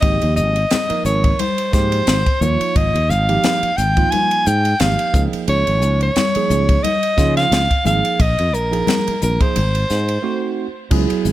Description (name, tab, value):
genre	electric jazz fusion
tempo	88 BPM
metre	4/4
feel	swing 56% on 16ths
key	unclear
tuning	A4 = 442 Hz
part	clear soprano saxophone	melody	0.0-10.6 s	Bb4 to Ab5	-19 LUFS	equal	none
part	tine electric piano	accompaniment	0.0-11.3 s	F3 to Bb4	-23 LUFS	right 6 dB	phaser
part	sustaining fretless electric bass	bass	0.0-11.3 s	Ab1 to Db3	-18 LUFS	equal	none
part	crisp fusion drum kit	drums	0.0-11.3 s	crash cymbal, hi-hat, kick drum, ride cymbal, snare drum	-21 LUFS	equal	none
part	congas	percussion	0.0-11.0 s	none	-25 LUFS	left 7 dB	none
room	small room reverb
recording	none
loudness	-14 LUFS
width	side -14 dB against mid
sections	0.0-10.9 A section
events	break 10.2-10.9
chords	0.0 Abmaj7; 5.1 Dbadd9; 8.2 Bb7sus4; 9.6 Ab7b9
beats	| 0.03 0.71 1.39 2.07 | 2.75 3.44 4.12 4.80 | 5.48 6.16 6.84 7.52 | 8.20 8.88 9.56 10.24 | 10.92